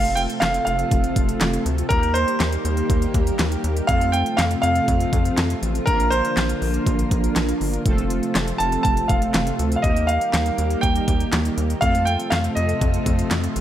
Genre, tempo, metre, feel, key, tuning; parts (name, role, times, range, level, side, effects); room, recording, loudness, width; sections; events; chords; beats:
synth-pop; 121 BPM; 4/4; straight; F mixolydian; A4 = 440 Hz
clear concert grand piano; melody; 0.0-13.5 s; Bb4 to A5; -23 LUFS; right 1 dB; slapback echo
analog synth brass; accompaniment; 0.0-13.6 s; A3 to Bb4; -26 LUFS; right 2 dB; chorus
soft string machine; sustained chords; 0.3-13.6 s; C3 to G4; -28 LUFS; left 1 dB; ensemble chorus
rubbery square bass; bass; 0.0-13.6 s; F1 to F2; -24 LUFS; equal
pop drum kit; drums; 0.0-13.6 s; handclaps, hi-hat, kick drum, snare drum; -23 LUFS; equal
light reverb; -18 LUFS; side -11 dB against mid
0.0-13.6 A section
0.0 F; 1.9 Eb; 3.9 F; 5.9 Bb; 7.9 F; 9.8 Eb; 11.8 F
0.42 0.91 1.41 | 1.91 2.40 2.90 3.39 | 3.89 4.38 4.88 5.38 | 5.87 6.37 6.86 7.36 | 7.86 8.35 8.85 9.34 | 9.84 10.34 10.83 11.33 | 11.82 12.32 12.81 13.31